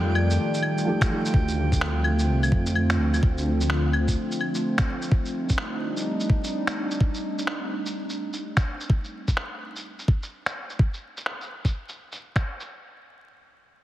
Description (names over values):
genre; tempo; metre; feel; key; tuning
future garage; 127 BPM; 4/4; swing 62% on 16ths; C dorian; A4 = 441 Hz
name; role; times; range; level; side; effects
felt-muted upright piano; accompaniment; 0.0-1.4 s; F3 to G4; -32 LUFS; right 1 dB; vintage 12-bit sampler grit, sidechain pumping, dub echo
warbly tape-like pad; sustained chords; 0.0-8.9 s; D3 to D5; -28 LUFS; right 1 dB; chorus, built-in reverb, vintage 12-bit sampler grit, sidechain pumping
dark detuned saw bass; bass; 0.0-4.2 s; C2 to F2; -23 LUFS; equal; sidechain pumping
drifting glass-harmonics texture; texture; 0.0-5.1 s; G5; -37 LUFS; right 4 dB; chorus, built-in reverb
electronic claves, shaker and finger snaps; drums; 0.2-12.7 s; none; -31 LUFS; left 1 dB; low-pass filter on perc, low-pass filter on snare, low-pass filter on room
electronic kick drum; drums; 1.0-12.4 s; none; -22 LUFS; equal; overdrive
room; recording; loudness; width
light reverb, digital ambience; heavily compressed radio sound, multiband compression, vinyl crackle; -23 LUFS; side -14 dB against mid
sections
0.0-12.7 A section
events
none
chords
0.0 F9; 1.3 Dm7; 5.1 Cm69